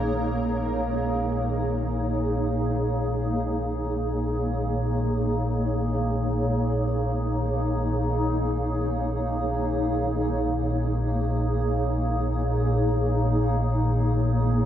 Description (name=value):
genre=dark ambient drone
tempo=free time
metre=none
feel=none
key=unclear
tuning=A4 = 441 Hz
part: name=granular cloud pad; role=sustained chords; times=0.0-14.7 s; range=Bb3 to Db5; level=-26 LUFS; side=equal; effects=built-in reverb
part: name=deep rumbling drone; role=drone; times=0.0-14.7 s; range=Bb1 to Bb2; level=-26 LUFS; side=equal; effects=built-in reverb, lush chorus
room=wet huge ambient reverb, RT60 7.7 s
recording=worn, warbling old tape, cassette tape, warbly pitch drift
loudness=-23 LUFS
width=side -10 dB against mid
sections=0.1-14.7 A section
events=none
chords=0.0 Absus24/Bb